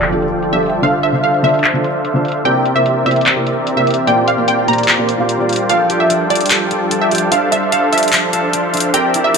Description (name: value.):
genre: future bass.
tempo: 148 BPM.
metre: 4/4.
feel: half-time.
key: unclear.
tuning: A4 = 440 Hz.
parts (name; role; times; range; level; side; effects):
wide unison pluck; melody; 0.0-9.4 s; D5 to Bb5; -17 LUFS; right 1 dB; ping-pong delay.
shimmering ambient pad; sustained chords; 0.3-9.4 s; E3 to C5; -24 LUFS; right 1 dB; chorus, built-in reverb.
concert harp; arpeggios; 0.0-1.6, 5.7-9.4 s; D4 to F5; -24 LUFS; right 2 dB; ping-pong delay.
supersaw chords; riff; 0.0-9.4 s; F3 to G5; -17 LUFS; equal; low-pass filter.
dubstep drum kit; drums; 0.0-9.4 s; handclaps, hi-hat; -17 LUFS; left 2 dB; low-pass filter on hats, low-pass filter on perc, low-pass filter on snare, low-pass filter on cymbals.
impact; sound effects; 0.0-0.8 s; none; -28 LUFS; right 2 dB; none.
felt-muted upright piano; accompaniment; 0.1-5.6 s; Bb2 to F5; -19 LUFS; equal; ping-pong delay.
room: moderate lush hall reverb, RT60 1.8 s.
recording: none.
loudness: -12 LUFS.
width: side -5 dB against mid.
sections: 0.0-9.4 A section.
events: impact 0.0-0.8; filter sweep on drum 0.0-9.4; filter sweep on ambient pad 0.0-9.4.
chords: 0.0 F69; 0.8 Dm7; 2.5 C7; 4.1 Bb6; 5.7 F69; 7.3 Dm7.